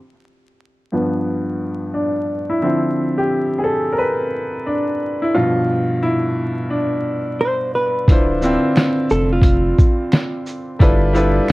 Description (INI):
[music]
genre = lo-fi hip hop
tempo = 88 BPM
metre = 4/4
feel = swing 64% on 16ths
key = D dorian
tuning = A4 = 440 Hz
[part]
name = bright upright piano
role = accompaniment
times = 0.9-11.5 s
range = G2 to C5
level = -18 LUFS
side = equal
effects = cassette tape, low-pass filter
[part]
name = hollow-body jazz guitar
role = melody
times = 7.4-10.4 s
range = F4 to C5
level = -21 LUFS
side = right 1 dB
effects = low-pass filter, analog delay
[part]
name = soft dub sub bass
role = bass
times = 8.1-11.5 s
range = D1 to A1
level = -19 LUFS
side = equal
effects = none
[part]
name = lo-fi sampler-style drum kit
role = drums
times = 8.1-11.5 s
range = hi-hat, kick drum, shaker, snare drum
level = -13 LUFS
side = equal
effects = vintage 12-bit sampler grit
[part]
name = finger snap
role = percussion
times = 8.8-11.5 s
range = none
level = -34 LUFS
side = right 4 dB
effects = none
[sound]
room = light reverb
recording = worn, warbling old tape, cassette tape, vinyl crackle, warbly pitch drift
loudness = -16 LUFS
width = side -20 dB against mid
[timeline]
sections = 0.0-8.1 A section; 8.1-11.5 B section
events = upright piano solo 0.0-8.1; filter sweep on upright piano 0.0-8.1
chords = 0.0 G7; 2.6 Dm7; 5.3 G7; 8.1 Dm7; 10.8 G13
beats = 0.57 1.26 1.94 | 2.62 3.30 3.98 4.67 | 5.35 6.03 6.71 7.39 | 8.07 8.76 9.44 10.12 | 10.80 11.48